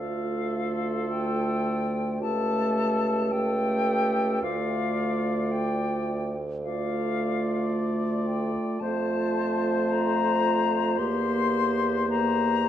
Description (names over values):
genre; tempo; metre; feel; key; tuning
classical, slow romantic movement for wind quintet; 54 BPM; 4/4; rubato; D minor; A4 = 440 Hz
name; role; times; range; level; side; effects
silver concert flute; melody; 0.0-12.7 s; F5 to C6; -30 LUFS; left 6 dB; none
warm oboe; second line; 0.0-12.7 s; A4 to D5; -34 LUFS; left 3 dB; none
warm French horn; accompaniment; 0.0-12.7 s; A3 to Bb3; -29 LUFS; left 1 dB; none
warm clarinet; accompaniment; 0.0-12.7 s; F4 to G4; -32 LUFS; right 6 dB; none
dark bassoon; bass; 0.0-12.7 s; C#2 to F2; -30 LUFS; right 2 dB; none
room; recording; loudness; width
wet recital hall reverb, RT60 1.5 s; dark, warm production; -24 LUFS; side -10 dB against mid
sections
0.0-12.7 A section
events
none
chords
0.0 Dm; 2.2 A7/C#; 4.4 Dm; 8.8 F; 11.0 C7/E